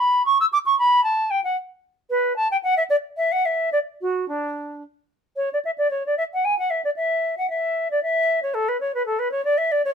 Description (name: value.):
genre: classical, baroque-style fantasia for unaccompanied flute.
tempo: 114 BPM.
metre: 3/4.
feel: rubato.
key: D major.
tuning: A4 = 440 Hz.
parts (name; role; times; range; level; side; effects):
silver concert flute; solo; 0.0-9.9 s; D4 to E6; -19 LUFS; equal; none.
room: light reverb.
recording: minimal, uncompressed stereo recording.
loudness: -20 LUFS.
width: side -7 dB against mid.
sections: 0.0-5.4 A section; 5.4-9.9 A section.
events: none.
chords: none.